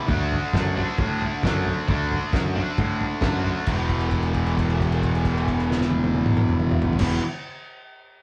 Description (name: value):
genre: garage rock duo or trio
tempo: 134 BPM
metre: 4/4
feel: straight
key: unclear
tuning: A4 = 440 Hz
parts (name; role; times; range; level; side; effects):
- fuzz guitar; riff; 0.0-7.2 s; E2 to D4; -26 LUFS; equal; distortion
- fuzz picked electric bass; bass; 0.1-7.2 s; E1 to A2; -29 LUFS; equal; overdrive
- cloth-damped thuddy drum kit; drums; 0.1-7.1 s; crash cymbal, kick drum, snare drum, toms; -28 LUFS; equal; none
room: moderate studio reverb, RT60 0.7 s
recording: band playing live in one room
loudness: -23 LUFS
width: mono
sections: 0.0-3.7 A section; 3.7-7.3 B section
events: held note 3.7-7.0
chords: 0.1 D; 3.7 E5